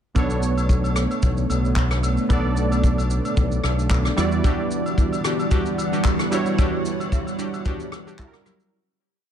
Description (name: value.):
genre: amapiano.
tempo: 112 BPM.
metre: 4/4.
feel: swing 55% on 16ths.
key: B minor.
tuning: A4 = 439 Hz.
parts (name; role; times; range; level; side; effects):
warm analog keys; accompaniment; 0.1-8.8 s; G3 to D5; -26 LUFS; right 4 dB; chorus.
string machine, cellos; sustained chords; 0.2-8.7 s; E3 to F#5; -27 LUFS; equal; ensemble chorus, sidechain pumping.
fingered electric bass; bass; 0.2-4.4 s; B1 to E2; -22 LUFS; equal; none.
soft brush drum kit; drums; 0.2-8.7 s; handclaps, kick drum, rim click, shaker; -23 LUFS; equal; none.
agogo bells and woodblock; percussion; 0.2-8.6 s; none; -34 LUFS; left 2 dB; none.
glassy wavetable pluck; stabs; 4.4-8.7 s; F#3 to A#4; -30 LUFS; left 1 dB; chorus, ping-pong delay.
room: small room reverb.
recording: none.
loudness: -19 LUFS.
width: side -9 dB against mid.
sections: 0.2-8.7 groove.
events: fade-out 6.6-8.7.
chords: 0.2 Bm9; 4.2 Em9; 8.2 F#7b9.